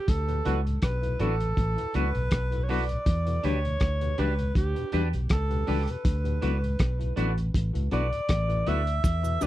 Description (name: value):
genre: lovers rock reggae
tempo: 80 BPM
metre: 4/4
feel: swing 55% on 16ths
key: unclear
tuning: A4 = 440 Hz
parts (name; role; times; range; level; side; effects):
- breathy alto saxophone; melody; 0.0-9.5 s; G4 to E5; -32 LUFS; right 1 dB; tape echo
- vintage muted fingered electric bass; bass; 0.1-9.5 s; A1 to E2; -27 LUFS; equal; none
- cloth-damped thuddy drum kit; drums; 0.1-9.5 s; hi-hat, kick drum, rim click; -27 LUFS; equal; none
- mellow tonewheel organ; accompaniment; 0.3-9.5 s; D2 to D4; -34 LUFS; left 3 dB; slow rotary speaker
- tine electric piano; accompaniment; 0.5-9.5 s; D4 to B4; -37 LUFS; left 6 dB; overdrive, fast stereo tremolo, tape echo
- twangy electric guitar; stabs; 0.5-9.5 s; D4 to B4; -33 LUFS; right 5 dB; wide subtle chorus
- cabasa; percussion; 9.0-9.5 s; none; -43 LUFS; right 11 dB; none
room: little or no reverb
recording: dry, close 1970s-style studio recording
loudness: -24 LUFS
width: side -14 dB against mid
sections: 0.0-9.5 A section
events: none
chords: 0.1 D6; 3.1 Em7; 6.1 D6